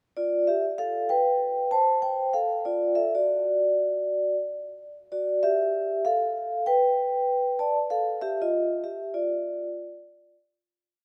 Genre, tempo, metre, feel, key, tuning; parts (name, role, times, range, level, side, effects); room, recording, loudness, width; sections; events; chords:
hip hop; 97 BPM; 4/4; swing 63% on 16ths; A4 = 440 Hz
vibraphone with medium mallets; solo; 0.2-10.3 s; F4 to A5; -26 LUFS; equal
wet lush hall reverb, RT60 3.0 s; rough home demo mix; -26 LUFS; mono
0.0-0.8 pickup bar; 0.8-10.7 A section
vibraphone solo 0.8-10.7; fade-out 8.2-10.7
0.0 Fsus2; 0.8 F69; 2.9 D; 5.1 Dadd9; 5.7 G9; 8.2 Ebmaj9/F; 9.4 N.C.